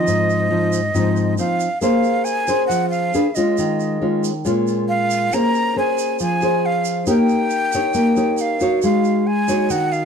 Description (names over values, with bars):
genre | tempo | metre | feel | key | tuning
bossa nova | 137 BPM | 4/4 | straight | Bb minor | A4 = 440 Hz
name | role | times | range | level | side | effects
breathy jazz flute | melody | 0.0-10.1 s | Eb5 to Bb5 | -21 LUFS | right 1 dB | none
nylon-string guitar | accompaniment | 0.0-10.1 s | Ab2 to Db5 | -18 LUFS | left 1 dB | none
tube shaker | percussion | 0.1-10.1 s | none | -33 LUFS | right 8 dB | none
room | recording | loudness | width
moderate studio reverb, RT60 0.8 s | dark, warm production | -16 LUFS | side -6 dB against mid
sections
0.0-1.8 A section; 1.8-10.1 B section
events
none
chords
0.1 Fm7/Ab; 1.4 Cmadd11/F; 1.8 Bbm9; 3.1 Abm6; 3.6 Eb9sus4; 5.3 Bbm9; 7.1 Eb7/Bb; 8.8 Ab7sus4